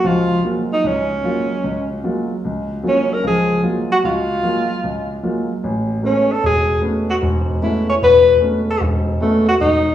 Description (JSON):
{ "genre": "jazz", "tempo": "151 BPM", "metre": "4/4", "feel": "swing 66% on 8ths", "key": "unclear", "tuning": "A4 = 441 Hz", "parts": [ { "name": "breathy tenor saxophone", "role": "melody", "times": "0.0-9.9 s", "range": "A3 to C#5", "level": "-16 LUFS", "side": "left 1 dB", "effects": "none" }, { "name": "warm concert grand piano", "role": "accompaniment", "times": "0.0-9.9 s", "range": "E1 to E#4", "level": "-19 LUFS", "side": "equal", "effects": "none" } ], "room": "wet large studio reverb, RT60 1.5 s", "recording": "heard from further back in the room, small room ambience", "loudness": "-15 LUFS", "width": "side -11 dB against mid", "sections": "0.0-9.9 A section", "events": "none", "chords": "0.0 F#maj9; 5.6 Amaj9" }